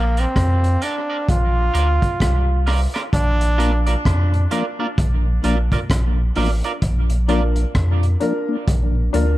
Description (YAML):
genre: dub reggae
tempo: 65 BPM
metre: 4/4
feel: swing 61% on 16ths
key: Bb major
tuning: A4 = 440 Hz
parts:
  - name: brilliant trombone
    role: melody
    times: 0.0-3.8 s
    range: Bb3 to F4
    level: -24 LUFS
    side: right 1 dB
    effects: dub echo
  - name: electric guitar at the edge of break-up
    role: accompaniment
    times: 0.0-7.4 s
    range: F4 to D5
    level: -28 LUFS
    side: right 4 dB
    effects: harmonic tremolo, high-pass filter, dub echo
  - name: warm sub bass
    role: bass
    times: 0.0-9.4 s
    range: A1 to F2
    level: -18 LUFS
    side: equal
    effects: none
  - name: mellow tonewheel organ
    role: accompaniment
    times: 0.2-9.3 s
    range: Bb2 to D4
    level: -26 LUFS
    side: left 4 dB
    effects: slow rotary speaker, high-pass filter, dub echo
  - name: crunchy breakbeat drum kit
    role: drums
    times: 0.2-9.4 s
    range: hi-hat, kick drum, rim click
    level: -22 LUFS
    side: equal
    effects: none
  - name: warm upright piano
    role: stabs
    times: 7.3-9.4 s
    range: D4 to Bb4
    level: -24 LUFS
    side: left 2 dB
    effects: high-pass filter, dub echo
room: light reverb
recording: dark, warm production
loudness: -16 LUFS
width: side -16 dB against mid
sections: 0.0-9.4 A section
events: break 0.0-6.8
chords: 0.0 Bb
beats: 0.35 1.28 2.20 | 3.13 4.05 4.98 5.90 | 6.82 7.75 8.67